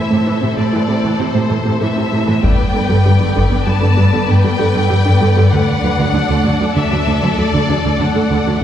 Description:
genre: cinematic, hybrid orchestral and electronic film score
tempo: 97 BPM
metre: 5/4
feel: straight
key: unclear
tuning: A4 = 440 Hz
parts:
  - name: rich symphonic violin section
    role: melody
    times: 0.0-8.6 s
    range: C5 to A5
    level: -22 LUFS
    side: left 3 dB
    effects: none
  - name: warm symphonic violin section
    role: second line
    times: 0.0-8.6 s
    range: A4 to D5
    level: -22 LUFS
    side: left 4 dB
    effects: none
  - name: warm symphonic viola section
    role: accompaniment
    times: 0.0-8.6 s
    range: C3 to E4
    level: -21 LUFS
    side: right 1 dB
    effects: none
  - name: soft round pluck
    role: arpeggios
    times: 0.0-8.6 s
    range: D3 to A4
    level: -20 LUFS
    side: right 2 dB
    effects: chorus
  - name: rich symphonic cello section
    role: bass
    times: 0.1-8.5 s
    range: D2 to A2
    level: -15 LUFS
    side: equal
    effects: none
  - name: taiko ensemble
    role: drums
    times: 2.4-3.7 s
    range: none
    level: -18 LUFS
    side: left 1 dB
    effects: none
room: wet scoring stage reverb, RT60 1.6 s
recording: heard from further back in the room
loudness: -12 LUFS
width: side -10 dB against mid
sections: 0.0-8.6 A section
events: none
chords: 0.0 Am; 2.4 G; 5.5 D

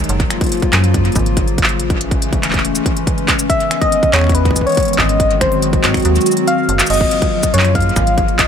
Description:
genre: IDM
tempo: 141 BPM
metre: 4/4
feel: straight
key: Gb lydian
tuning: A4 = 440 Hz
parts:
  - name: warbly tape-like pad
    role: sustained chords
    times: 0.0-8.5 s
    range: Db3 to Gb4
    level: -18 LUFS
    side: left 2 dB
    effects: chorus, built-in reverb, vintage 12-bit sampler grit
  - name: metallic FM bass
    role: bass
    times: 0.0-8.5 s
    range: E1 to Ab2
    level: -17 LUFS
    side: equal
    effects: none
  - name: industrial drum kit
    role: drums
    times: 0.0-8.5 s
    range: cabasa, crash cymbal, finger snaps, handclaps, hi-hat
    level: -19 LUFS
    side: equal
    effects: digital delay
  - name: electronic kick drum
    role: drums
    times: 0.2-8.5 s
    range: none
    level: -18 LUFS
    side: equal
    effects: distortion
  - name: soft struck synth lead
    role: melody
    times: 3.5-8.5 s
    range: B4 to F5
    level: -17 LUFS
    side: left 2 dB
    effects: chorus, tape echo
room: light reverb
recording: none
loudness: -12 LUFS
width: side -8 dB against mid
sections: 0.0-6.9 A section; 6.9-8.5 A section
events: kick drops out 6.0-6.9; band accent 6.8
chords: 0.1 Gbmaj7; 1.8 Amaj7; 3.5 Emaj7; 5.2 Ab7; 6.9 Gbmaj7

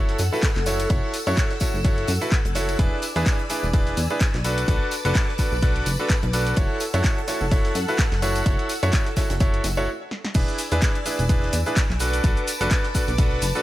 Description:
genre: piano house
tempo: 127 BPM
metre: 4/4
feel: swing 56% on 16ths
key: F# minor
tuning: A4 = 440 Hz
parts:
  - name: string machine, violins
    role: sustained chords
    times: 0.0-13.6 s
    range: A4 to E6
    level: -31 LUFS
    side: equal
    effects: ensemble chorus, sidechain pumping
  - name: bright baby grand piano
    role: riff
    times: 0.0-13.6 s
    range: D4 to C#5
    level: -26 LUFS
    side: right 1 dB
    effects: sidechain pumping
  - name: plucky analog bass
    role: bass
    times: 0.0-13.5 s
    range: E1 to F#2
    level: -25 LUFS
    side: equal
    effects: tube saturation, sidechain pumping
  - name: crisp fusion drum kit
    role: drums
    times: 0.1-13.5 s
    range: hi-hat, snare drum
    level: -39 LUFS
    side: right 3 dB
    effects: none
  - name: punchy analog drum machine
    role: drums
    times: 0.1-13.6 s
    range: cabasa, crash cymbal, handclaps, hi-hat, snare drum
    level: -30 LUFS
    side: left 1 dB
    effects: none
  - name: tambourine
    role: percussion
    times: 0.2-13.6 s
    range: none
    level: -37 LUFS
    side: left 2 dB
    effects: none
  - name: electronic kick drum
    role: drums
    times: 0.4-13.3 s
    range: none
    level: -21 LUFS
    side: equal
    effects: none
room: small room ambience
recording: none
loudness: -20 LUFS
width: side -15 dB against mid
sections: 0.0-10.3 A section; 10.3-13.6 A section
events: stop 9.9-10.3; drum fill 10.1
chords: 0.0 F#m7; 2.8 E7; 4.4 Bm7; 6.6 F#m7; 10.3 E7; 12.0 Bm7

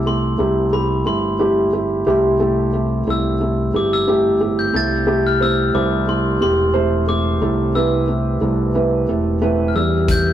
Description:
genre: piano-driven pop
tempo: 90 BPM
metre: 4/4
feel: straight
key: C major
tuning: A4 = 439 Hz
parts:
  - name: glockenspiel with soft plastic mallets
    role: melody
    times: 0.0-10.3 s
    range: B5 to A6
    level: -24 LUFS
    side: left 3 dB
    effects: none
  - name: felt-muted upright piano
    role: accompaniment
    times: 0.0-10.3 s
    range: C3 to C5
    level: -17 LUFS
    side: right 1 dB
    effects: none
  - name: fingered electric bass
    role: bass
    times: 0.0-10.3 s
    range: E1 to E2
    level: -22 LUFS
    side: left 1 dB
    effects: none
  - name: natural country drum kit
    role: drums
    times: 10.1-10.2 s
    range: hi-hat, kick drum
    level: -18 LUFS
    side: left 1 dB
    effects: none
room: wet stone room reverb, RT60 1.3 s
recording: rough rehearsal-room recording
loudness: -15 LUFS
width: side -11 dB against mid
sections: 0.0-10.3 A section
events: none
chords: 0.0 C6; 4.7 Am; 9.8 Em

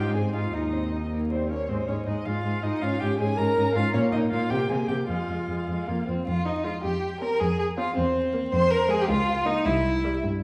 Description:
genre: quick classical-period movement for string quartet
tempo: 106 BPM (dotted quarters)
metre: 6/8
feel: rubato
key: Ab major, F minor from 3.9 s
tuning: A4 = 440 Hz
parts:
  - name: rich violin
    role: melody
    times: 0.0-10.2 s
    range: C5 to C6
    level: -36 LUFS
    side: equal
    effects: none
  - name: rich violin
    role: second line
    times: 0.0-10.2 s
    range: G3 to C5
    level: -30 LUFS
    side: equal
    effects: none
  - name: rich viola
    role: accompaniment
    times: 0.0-10.2 s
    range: G3 to Bb4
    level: -33 LUFS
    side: equal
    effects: none
  - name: rich cello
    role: bass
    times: 0.0-10.4 s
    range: C2 to C3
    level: -30 LUFS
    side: equal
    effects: none
room: wet recital hall reverb, RT60 1.6 s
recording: heard from further back in the room, vinyl crackle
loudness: -26 LUFS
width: mono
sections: 0.0-6.3 A section; 6.3-10.4 B section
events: none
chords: 0.0 Ab; 0.5 Cm/Eb; 1.1 Eb; 1.7 Ab5; 2.8 Bbm7/Ab; 3.9 Bbsus4; 4.5 Abmaj9; 5.1 Fm; 6.8 F5; 8.0 C7/E; 8.5 Fm; 9.1 Bbm/Db; 9.7 C

